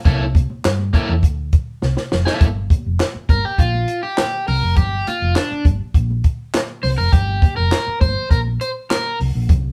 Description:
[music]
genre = funk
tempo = 102 BPM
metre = 4/4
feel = straight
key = G dorian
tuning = A4 = 440 Hz
[part]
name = crunchy overdriven guitar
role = accompaniment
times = 0.1-9.2 s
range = Bb3 to C5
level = -24 LUFS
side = equal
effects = none
[part]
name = hollow-body short-scale fingered electric bass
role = bass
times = 0.1-9.7 s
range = F1 to G2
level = -22 LUFS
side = equal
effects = none
[part]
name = compact cocktail drum kit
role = drums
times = 0.1-9.6 s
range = handclaps, hi-hat, kick drum, snare drum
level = -18 LUFS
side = equal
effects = none
[part]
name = congas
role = percussion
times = 0.1-9.6 s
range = none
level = -33 LUFS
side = equal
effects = none
[sound]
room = moderate studio reverb, RT60 0.5 s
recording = band playing live in one room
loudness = -18 LUFS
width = mono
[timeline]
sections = 0.0-2.4 A section; 2.4-9.7 B section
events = drum fill 1.8-2.4; overdriven electric guitar solo 2.4-9.7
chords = 0.1 C13; 2.4 Gm7

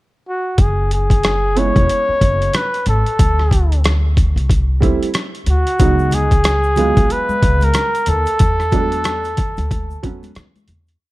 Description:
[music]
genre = hip hop, jazz-hop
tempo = 92 BPM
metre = 4/4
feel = swing 60% on 16ths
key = F# minor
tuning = A4 = 440 Hz
[part]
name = warm flugelhorn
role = melody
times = 0.3-10.4 s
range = F#4 to C#5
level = -18 LUFS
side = equal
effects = none
[part]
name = upright bass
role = bass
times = 0.6-11.0 s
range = E1 to E3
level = -17 LUFS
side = equal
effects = none
[part]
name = boom bap sampler-style drum kit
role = drums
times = 0.6-11.0 s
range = hi-hat, kick drum, rim click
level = -16 LUFS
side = equal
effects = overdrive
[part]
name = warm upright piano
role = accompaniment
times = 1.6-10.3 s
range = F#3 to E#4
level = -22 LUFS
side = right 4 dB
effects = none
[part]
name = tube shaker and congas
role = percussion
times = 5.8-11.0 s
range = none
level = -29 LUFS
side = left 2 dB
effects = none
[sound]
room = light reverb, small room ambience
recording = dark, warm production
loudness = -13 LUFS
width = side -18 dB against mid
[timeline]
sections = 0.0-0.6 pickup bar; 0.6-11.0 head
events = fade-out 8.4-11.0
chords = 0.0 N.C.; 0.6 F#9sus4; 3.2 D7(no3); 5.8 C#9sus4; 8.4 E9sus4

